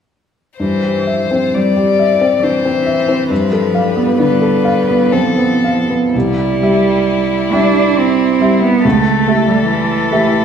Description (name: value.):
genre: classical, slow romantic movement for piano trio.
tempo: 66 BPM.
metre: 3/4.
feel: uneven beats, rubato.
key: C major.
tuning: A4 = 440 Hz.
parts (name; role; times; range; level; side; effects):
warm violin; melody; 0.6-10.4 s; E4 to D5; -17 LUFS; left 6 dB; none.
rich cello; second line; 0.6-10.4 s; E3 to D4; -17 LUFS; right 5 dB; none.
warm baby grand piano; accompaniment; 0.6-10.4 s; C2 to F5; -14 LUFS; equal; none.
room: wet scoring stage reverb, RT60 1.6 s.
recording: heard from further back in the room.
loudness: -11 LUFS.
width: side -7 dB against mid.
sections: 0.6-6.1 A section; 6.1-10.4 B section.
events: none.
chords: 0.6 C/G; 3.3 G9; 6.1 C; 8.8 A7/C#.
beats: | 0.60 1.54 2.44 | 3.31 4.19 5.12 | 6.14 7.07 7.96 | 8.85 9.70.